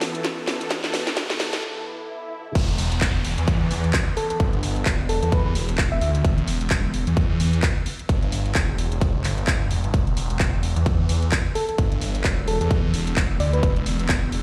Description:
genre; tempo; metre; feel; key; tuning
bass house; 130 BPM; 4/4; swing 58% on 16ths; E minor; A4 = 441 Hz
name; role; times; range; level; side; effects
sweeping resonant pad; sustained chords; 0.0-14.4 s; E3 to E5; -41 LUFS; equal; chorus, sidechain pumping
garage drum kit; drums; 0.0-14.4 s; crash cymbal, handclaps, hi-hat, snare drum; -30 LUFS; equal; none
riser, swell and downlifter; sound effects; 0.0-6.2 s; none; -37 LUFS; equal; none
ethereal airy pad; texture; 0.0-14.4 s; E4 to E6; -48 LUFS; equal; none
electronic kick drum; drums; 0.2-14.2 s; none; -26 LUFS; equal; overdrive, high-pass filter on kick
phased detuned saw bass; bass; 2.6-14.4 s; E1 to E2; -25 LUFS; equal; phaser, sidechain pumping
soft struck synth lead; melody; 4.2-6.1, 11.6-13.7 s; A4 to E5; -31 LUFS; equal; chorus, vintage 12-bit sampler grit, dub echo
room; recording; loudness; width
light reverb; played on a big sound system in a bare room, stone room reverb, high-pass filter; -23 LUFS; mono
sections
0.0-2.6 A section; 2.6-14.4 B section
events
build-up 0.0-2.6; drum fill 0.0-1.6; riser 0.0-1.6; filter sweep 0.0-2.6; break 1.6-2.6; swell 1.6-2.6; drop 2.6-14.4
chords
0.0 E5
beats
0.25 | 0.71 1.17 1.63 2.09 | 2.55 3.02 3.48 3.94 | 4.40 4.86 5.32 5.78 | 6.25 6.71 7.17 7.63 | 8.09 8.55 9.02 9.48 | 9.94 10.40 10.86 11.32 | 11.78 12.25 12.71 13.17 | 13.63 14.09

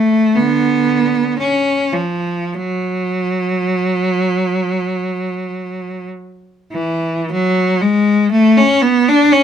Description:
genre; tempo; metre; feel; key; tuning
classical, free, expressive piece for unaccompanied cello; 42-66 BPM; 4/4; rubato; F# minor; A4 = 440 Hz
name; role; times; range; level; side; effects
rich cello; solo; 0.0-9.4 s; D3 to D4; -13 LUFS; equal; none
room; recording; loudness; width
light reverb; minimal, uncompressed stereo recording; -13 LUFS; side -8 dB against mid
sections
0.0-7.3 A section; 7.3-9.4 A section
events
none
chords
none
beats
0.37 1.39 | 2.55 3.77 4.93 6.08 | 7.32 8.33 9.32

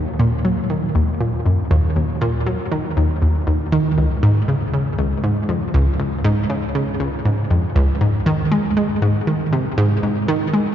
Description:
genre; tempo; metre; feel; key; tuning
ambient; 119 BPM; 4/4; straight; Eb dorian; A4 = 440 Hz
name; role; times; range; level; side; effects
analog pluck; solo; 0.0-10.6 s; Db2 to Ab3; -16 LUFS; equal; chorus, tape echo
room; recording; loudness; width
wet cathedral reverb, RT60 5.6 s; in a vast, echoing space, cassette tape, nothing above 7.6 kHz; -16 LUFS; side -10 dB against mid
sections
0.0-10.7 A section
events
none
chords
none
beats
0.45 0.95 1.46 | 1.96 2.46 2.97 3.47 | 3.98 4.48 4.99 5.49 | 5.99 6.50 7.00 7.51 | 8.01 8.51 9.02 9.52 | 10.03 10.53

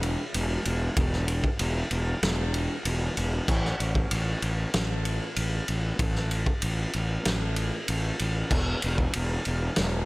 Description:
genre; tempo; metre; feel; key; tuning
rock, shoegaze and dream pop; 95 BPM; 4/4; straight; unclear; A4 = 440 Hz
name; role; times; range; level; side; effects
fuzz fingered electric bass; bass; 0.0-10.1 s; E1 to A1; -28 LUFS; equal; overdrive
loose indie drum kit; drums; 0.0-9.9 s; crash cymbal, kick drum, ride cymbal, snare drum; -28 LUFS; equal; none
room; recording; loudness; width
little or no reverb; none; -25 LUFS; side -23 dB against mid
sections
0.0-10.1 A section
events
none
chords
none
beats
0.34 | 0.97 1.60 2.23 2.85 | 3.48 4.11 4.74 5.37 | 6.00 6.63 7.26 7.89 | 8.52 9.14 9.77

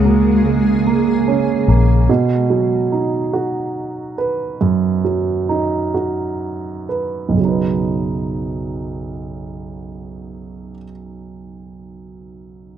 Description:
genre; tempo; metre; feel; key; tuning
six-eight pop ballad; 40-49 BPM (dotted quarters); 6/8; straight; B major; A4 = 440 Hz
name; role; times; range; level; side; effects
warm grand piano; accompaniment; 0.0-12.8 s; B1 to B4; -18 LUFS; right 4 dB; none
granular cloud pad; sustained chords; 0.0-2.1 s; C#3 to A#4; -20 LUFS; left 3 dB; built-in reverb
vintage muted fingered electric bass; bass; 0.0-2.1 s; A#1 to C#2; -16 LUFS; left 2 dB; none
room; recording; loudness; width
light reverb, studio reverb; dry, close 1970s-style studio recording; -15 LUFS; side -10 dB against mid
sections
0.0-2.1 A section; 2.1-7.4 B section; 7.4-10.4 C section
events
slowing down 2.1-7.4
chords
0.0 F#add9 (rootless); 2.1 B; 7.4 Badd9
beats
0.86 | 2.09 3.33 | 4.60 5.95 | 7.39 8.88

